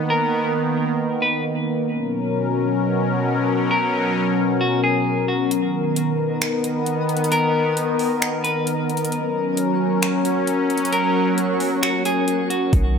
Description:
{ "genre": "hip hop, atmospheric cloud-rap", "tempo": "133 BPM", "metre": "4/4", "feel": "half-time", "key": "unclear", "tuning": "A4 = 439 Hz", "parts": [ { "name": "sweeping resonant pad", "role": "sustained chords", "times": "0.0-13.0 s", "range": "B2 to A#4", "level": "-20 LUFS", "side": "left 1 dB", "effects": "chorus, sidechain pumping" }, { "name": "clean electric guitar", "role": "melody", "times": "0.1-12.7 s", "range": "F#4 to B4", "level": "-24 LUFS", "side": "equal", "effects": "diffuse ambient delay" }, { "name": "smooth R&B drum kit", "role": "drums", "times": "5.5-12.8 s", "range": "finger snaps, hi-hat, kick drum", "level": "-25 LUFS", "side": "equal", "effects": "none" }, { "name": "twinkling granular texture", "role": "texture", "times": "5.9-13.0 s", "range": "A#3 to D#5", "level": "-31 LUFS", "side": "equal", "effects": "built-in reverb" }, { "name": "warm 808-style bass", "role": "bass", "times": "12.7-13.0 s", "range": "B1", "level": "-18 LUFS", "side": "equal", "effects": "none" } ], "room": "wet plate reverb, RT60 1.9 s, digital ambience", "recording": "dreamy mix soaked in reverb", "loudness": "-18 LUFS", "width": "side -6 dB against mid", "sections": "0.0-13.0 A section", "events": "kick muted 5.5-12.7", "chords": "0.0 Bmaj7; 1.9 F#/B; 5.5 Bmaj7; 9.1 F#" }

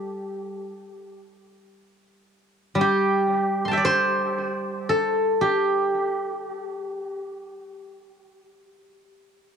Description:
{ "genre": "chinese traditional, Chinese solo plucked strings", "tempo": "free time", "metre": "none", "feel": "none", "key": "G zhi mode", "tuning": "A4 = 442 Hz", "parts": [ { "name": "steel-string zither", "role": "solo", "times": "0.0-9.2 s", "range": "G3 to C6", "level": "-22 LUFS", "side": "equal", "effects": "cassette tape, analog delay" } ], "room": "moderate studio reverb, RT60 0.6 s", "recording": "home recording on cassette", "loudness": "-21 LUFS", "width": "side -7 dB against mid", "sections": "0.0-9.6 A section", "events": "none", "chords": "none" }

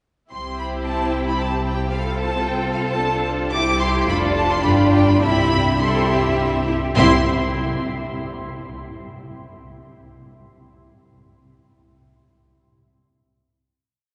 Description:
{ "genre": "quick classical-period movement for string orchestra", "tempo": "102-114 BPM", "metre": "3/4", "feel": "rubato", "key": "C major", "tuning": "A4 = 439 Hz", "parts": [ { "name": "rich chamber violin section", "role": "melody", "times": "0.3-7.3 s", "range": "F5 to D6", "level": "-27 LUFS", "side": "equal", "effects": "none" }, { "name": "rich chamber violin section", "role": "second line", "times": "0.3-7.3 s", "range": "G4 to E5", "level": "-28 LUFS", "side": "equal", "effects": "none" }, { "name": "rich chamber viola section", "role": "accompaniment", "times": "0.3-7.3 s", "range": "C4 to F4", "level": "-26 LUFS", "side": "equal", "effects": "none" }, { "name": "rich chamber double bass section", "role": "bass", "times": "0.3-7.3 s", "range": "F1 to C2", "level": "-26 LUFS", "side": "equal", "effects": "none" }, { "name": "rich studio cello section", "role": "bass", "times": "0.9-7.3 s", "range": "C2 to A4", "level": "-28 LUFS", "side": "equal", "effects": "none" } ], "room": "wet cathedral reverb, RT60 5.8 s", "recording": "heard from further back in the room, nothing above 10.6 kHz", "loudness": "-19 LUFS", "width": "mono", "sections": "0.3-7.0 A section; 7.0-8.7 final chord", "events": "none", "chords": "0.3 C; 1.9 F/C; 3.5 C; 4.1 Dm/F; 4.6 G7; 5.2 C" }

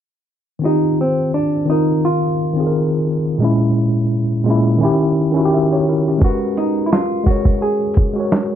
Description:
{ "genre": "lo-fi hip hop", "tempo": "86 BPM", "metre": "4/4", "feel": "swing 56% on 16ths", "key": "unclear", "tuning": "A4 = 440 Hz", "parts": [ { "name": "tine electric piano", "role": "accompaniment", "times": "0.6-8.6 s", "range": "Bb2 to Fb5", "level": "-16 LUFS", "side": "equal", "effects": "overdrive, fast stereo tremolo, low-pass filter" }, { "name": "vintage hollow-body jazz guitar", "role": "melody", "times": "0.7-8.6 s", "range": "C4 to Ab4", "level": "-19 LUFS", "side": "right 1 dB", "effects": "low-pass filter" }, { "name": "lo-fi sampler-style drum kit", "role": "drums", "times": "6.2-8.5 s", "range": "hi-hat, kick drum, snare drum", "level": "-15 LUFS", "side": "equal", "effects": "overdrive, vintage 12-bit sampler grit" } ], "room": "light reverb", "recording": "low-pass filter", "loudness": "-14 LUFS", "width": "side -10 dB against mid", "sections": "0.6-8.6 A section", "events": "filter sweep 0.6-8.6", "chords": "0.6 Eb69; 3.4 Bbm7b5; 4.8 Eb7b9; 6.2 Abm9" }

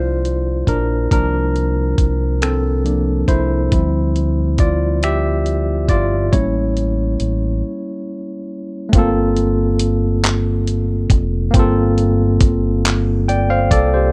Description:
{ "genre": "slow six-eight R&B", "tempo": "46 BPM (dotted quarters)", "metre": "6/8", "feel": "straight", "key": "unclear", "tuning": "A4 = 438 Hz", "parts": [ { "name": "barky tine electric piano", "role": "accompaniment", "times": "0.0-14.1 s", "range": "F3 to G5", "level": "-21 LUFS", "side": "equal", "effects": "overdrive" }, { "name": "deep dub fingered electric bass", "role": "bass", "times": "0.0-14.1 s", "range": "F1 to D2", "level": "-21 LUFS", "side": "equal", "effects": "none" }, { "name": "dusty soul sampler-style drum kit", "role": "drums", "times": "0.2-13.9 s", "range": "finger snaps, handclaps, hi-hat, kick drum", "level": "-18 LUFS", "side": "equal", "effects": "none" } ], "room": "little or no reverb", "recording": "dry, close 1970s-style studio recording", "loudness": "-17 LUFS", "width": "mono", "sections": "0.0-8.9 A section; 8.9-14.1 B section", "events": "tine electric piano solo 0.0-8.9; break 7.6-8.9", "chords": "0.0 C9sus4; 3.7 Dm11; 6.3 A7b9; 8.9 Gm11" }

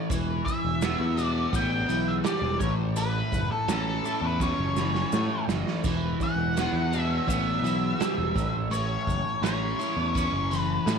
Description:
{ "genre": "psychedelic rock", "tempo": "84 BPM", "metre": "4/4", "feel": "straight", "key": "E dorian", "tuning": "A4 = 441 Hz", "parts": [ { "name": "overdriven semi-hollow guitar", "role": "riff", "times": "0.0-11.0 s", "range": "A2 to F#4", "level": "-29 LUFS", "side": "equal", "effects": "flanger" }, { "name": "overdriven picked electric bass", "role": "bass", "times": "0.1-11.0 s", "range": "E1 to A2", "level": "-29 LUFS", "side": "left 1 dB", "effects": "none" }, { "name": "raw garage drum kit", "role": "drums", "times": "0.1-11.0 s", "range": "crash cymbal, hi-hat, kick drum, snare drum", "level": "-32 LUFS", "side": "right 4 dB", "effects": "none" }, { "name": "maracas", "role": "percussion", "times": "0.1-11.0 s", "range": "none", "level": "-44 LUFS", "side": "left 20 dB", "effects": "none" }, { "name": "octave-fuzz lead guitar", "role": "melody", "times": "0.5-11.0 s", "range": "A4 to G5", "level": "-30 LUFS", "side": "left 1 dB", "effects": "wah, distortion, tape echo" } ], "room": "small room reverb", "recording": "1960s-style stereo", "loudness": "-24 LUFS", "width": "side -6 dB against mid", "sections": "0.0-11.0 A section", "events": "drum fill 4.4-5.8", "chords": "0.1 Emadd9; 2.6 A; 5.8 Emadd9; 8.4 A" }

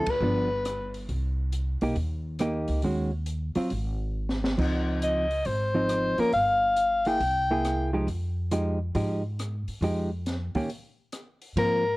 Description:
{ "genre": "jazz, small-group swing and bop", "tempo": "137 BPM", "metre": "4/4", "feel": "swing 66% on 8ths", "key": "F minor", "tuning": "A4 = 440 Hz", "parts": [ { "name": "breathy soprano saxophone", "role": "melody", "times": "0.0-1.0, 5.0-7.9, 11.6-12.0 s", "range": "A4 to G5", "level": "-25 LUFS", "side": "left 2 dB", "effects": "plate reverb" }, { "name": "hollow-body jazz guitar", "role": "accompaniment", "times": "0.0-11.8 s", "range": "Eb3 to Ab4", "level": "-28 LUFS", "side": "right 1 dB", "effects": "none" }, { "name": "upright bass", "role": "bass", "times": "0.0-12.0 s", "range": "G1 to Ab2", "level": "-30 LUFS", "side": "equal", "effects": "transformer saturation" }, { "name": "open jazz drum kit", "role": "drums", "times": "0.1-11.7 s", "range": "crash cymbal, hi-hat, kick drum, ride cymbal, rim click, snare drum", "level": "-36 LUFS", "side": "equal", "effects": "none" } ], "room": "light reverb", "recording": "worn, warbling old tape, cassette tape, warbly pitch drift", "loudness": "-25 LUFS", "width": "side -20 dB against mid", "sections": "0.0-11.6 A section", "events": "band accent 0.0; drum fill 4.1-4.6; break 10.7-11.6", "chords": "0.2 G7; 1.1 Cm7; 2.8 Ebm11; 3.7 N.C.; 4.6 Dbmaj9; 6.3 Gm7; 7.2 C7b13; 8.1 Fm9; 10.7 N.C." }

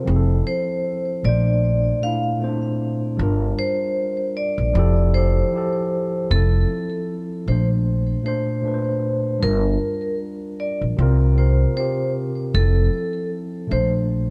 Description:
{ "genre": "lo-fi hip hop", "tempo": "77 BPM", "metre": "4/4", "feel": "swing 56% on 16ths", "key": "F major", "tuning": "A4 = 441 Hz", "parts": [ { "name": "vibraphone with hard mallets", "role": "melody", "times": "0.0-13.9 s", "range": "A4 to F5", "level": "-28 LUFS", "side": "equal", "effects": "low-pass filter, tape echo" }, { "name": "mellow tine electric piano", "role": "accompaniment", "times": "0.0-14.3 s", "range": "Bb2 to C5", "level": "-26 LUFS", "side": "equal", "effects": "cassette tape, low-pass filter" }, { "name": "upright bass", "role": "bass", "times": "0.1-14.3 s", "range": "F1 to C2", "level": "-20 LUFS", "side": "equal", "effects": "none" } ], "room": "small room reverb", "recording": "dark, warm production", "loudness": "-21 LUFS", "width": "mono", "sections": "0.0-6.3 A section; 6.3-14.3 B section", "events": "none", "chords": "0.1 Fmaj7; 1.2 Bbmaj9; 3.2 Gm7; 4.7 Fmaj9; 6.3 Fmaj7; 7.5 Bbmaj9; 9.4 Gm7; 11.0 C7sus4; 12.5 Fmaj7; 13.7 Bbmaj9" }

